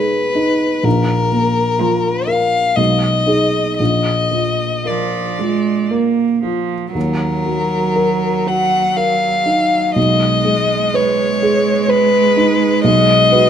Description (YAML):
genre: classical, slow romantic movement for piano quartet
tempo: 56-64 BPM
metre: 3/4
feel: rubato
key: unclear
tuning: A4 = 442 Hz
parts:
  - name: warm violin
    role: melody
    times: 0.0-13.5 s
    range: Bb4 to Gb5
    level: -16 LUFS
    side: left 4 dB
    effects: none
  - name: rich cello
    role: second line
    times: 0.0-13.5 s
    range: F3 to Bb3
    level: -20 LUFS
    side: right 9 dB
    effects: none
  - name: dark baby grand piano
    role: accompaniment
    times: 0.0-13.5 s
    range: Bb1 to Cb5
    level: -17 LUFS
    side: right 1 dB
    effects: none
room: moderate recital hall reverb, RT60 1.5 s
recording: close, detailed microphones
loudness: -13 LUFS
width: side -9 dB against mid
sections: 0.0-13.5 A section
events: none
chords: 0.0 Abm/Cb; 0.9 Bb5; 2.8 Abm/Cb; 3.8 Bb; 7.0 Ebm; 10.0 Abm/Cb; 12.8 B6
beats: | 0.85 1.80 2.78 | 3.80 4.86 5.92 | 6.95 7.97 8.97 | 9.97 10.96 11.90 | 12.85